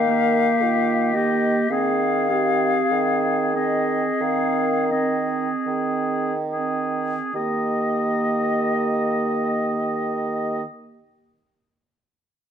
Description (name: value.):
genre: classical, slow romantic movement for wind quintet.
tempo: 34-59 BPM.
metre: 4/4.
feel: rubato.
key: Eb major.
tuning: A4 = 439 Hz.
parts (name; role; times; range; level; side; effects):
silver concert flute; melody; 0.0-10.6 s; Eb5 to F5; -25 LUFS; left 8 dB; none.
warm oboe; second line; 0.0-10.6 s; G4 to Eb5; -27 LUFS; left 1 dB; none.
warm French horn; accompaniment; 0.0-10.6 s; Bb3 to Bb4; -26 LUFS; left 2 dB; none.
warm clarinet; accompaniment; 0.0-10.6 s; Bb3 to G4; -26 LUFS; right 6 dB; none.
mellow bassoon; bass; 0.0-10.6 s; Eb3; -26 LUFS; right 3 dB; none.
room: moderate large studio reverb, RT60 1.3 s.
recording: dark, warm production.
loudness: -20 LUFS.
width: side -8 dB against mid.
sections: 0.0-7.3 A section; 7.3-12.5 B section.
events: slowing down 0.0-7.3.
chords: 0.0 Eb; 1.7 Ab/Eb; 7.3 Eb.